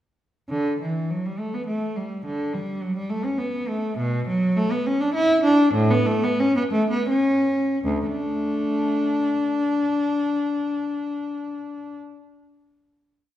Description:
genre	classical, baroque-style suite movement for unaccompanied cello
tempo	75-105 BPM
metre	3/4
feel	rubato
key	D major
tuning	A4 = 435 Hz
part	rich cello	solo	0.5-12.0 s	D2 to E4	-21 LUFS	equal	none
room	wet recital hall reverb, RT60 1.4 s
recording	heard from further back in the room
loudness	-21 LUFS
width	side -12 dB against mid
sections	0.5-7.8 A section; 7.8-12.4 final chord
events	slowing down 3.1-7.8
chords	none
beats	| 0.49 1.10 1.68 | 2.25 2.82 3.39 | 3.98 4.56 5.14 | 5.74 6.38 7.08 | 7.84 8.60 9.35 | 10.11 10.88 11.64

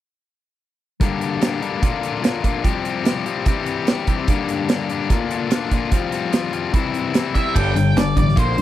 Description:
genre	classic rock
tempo	147 BPM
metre	4/4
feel	straight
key	G dorian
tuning	A4 = 440 Hz
part	distorted electric guitar	riff	1.0-8.6 s	G2 to G4	-21 LUFS	left 6 dB	overdrive
part	big rock drum kit	drums	1.0-8.6 s	crash cymbal, hi-hat, kick drum, snare drum	-20 LUFS	right 2 dB	none
part	octave-fuzz lead guitar	melody	7.3-8.6 s	C5 to G5	-23 LUFS	right 2 dB	distortion
part	growling picked electric bass	bass	7.6-8.6 s	G1 to G2	-20 LUFS	right 1 dB	overdrive
room	little or no reverb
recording	dry, close 1970s-style studio recording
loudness	-18 LUFS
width	side -13 dB against mid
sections	1.0-7.6 A section; 7.6-8.6 B section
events	none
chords	1.0 Gm; 1.8 Bb; 2.6 Fsus2; 3.5 C; 4.3 Gm; 5.1 Bb; 5.9 Fsus2; 6.7 C; 7.6 G5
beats	| 1.01 1.42 1.82 2.23 | 2.64 3.05 3.46 3.87 | 4.28 4.69 5.10 5.51 | 5.92 6.33 6.73 7.14 | 7.55 7.96 8.37

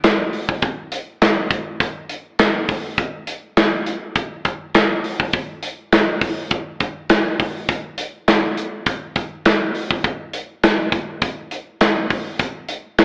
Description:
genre	funk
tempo	102 BPM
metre	4/4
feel	straight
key	none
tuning	none
part	modern studio drum kit	drums	0.0-13.0 s	handclaps, hi-hat, kick drum, snare drum	-19 LUFS	equal	none
room	wet lush hall reverb, RT60 1.8 s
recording	AM radio sound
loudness	-20 LUFS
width	mono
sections	0.0-13.0 A section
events	none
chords	none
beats	0.04 | 0.63 1.22 1.80 2.39 | 2.98 3.57 4.16 4.75 | 5.33 5.92 6.51 7.10 | 7.69 8.28 8.86 9.45 | 10.04 10.63 11.22 11.80 | 12.39 12.98

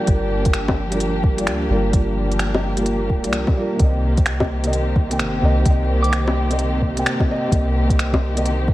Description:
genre	future garage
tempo	129 BPM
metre	4/4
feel	swing 63% on 16ths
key	unclear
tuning	A4 = 436 Hz
part	felt-muted upright piano	accompaniment	0.0-8.7 s	C3 to G5	-23 LUFS	right 1 dB	sidechain pumping, dub echo
part	dark studio string section	sustained chords	0.0-8.7 s	Eb3 to G4	-25 LUFS	left 1 dB	vintage 12-bit sampler grit, sidechain pumping
part	soft 808-style bass	bass	0.1-8.7 s	D1 to D2	-21 LUFS	equal	sidechain pumping
part	electronic kick drum	drums	0.1-8.7 s	none	-18 LUFS	equal	none
part	organic electronic drum kit	drums	0.1-8.6 s	bongos, finger snaps, hi-hat	-24 LUFS	left 1 dB	none
part	soft synth bell	melody	6.0-6.2 s	D6	-30 LUFS	right 2 dB	chorus, phaser, dub echo
room	light reverb, digital ambience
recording	vinyl crackle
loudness	-17 LUFS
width	side -16 dB against mid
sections	0.0-8.7 A section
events	none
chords	0.0 Gm7; 3.8 Cm7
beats	| 0.08 0.54 1.01 1.47 | 1.94 2.40 2.87 3.33 | 3.80 4.26 4.73 5.19 | 5.66 6.12 6.59 7.05 | 7.52 7.98 8.45

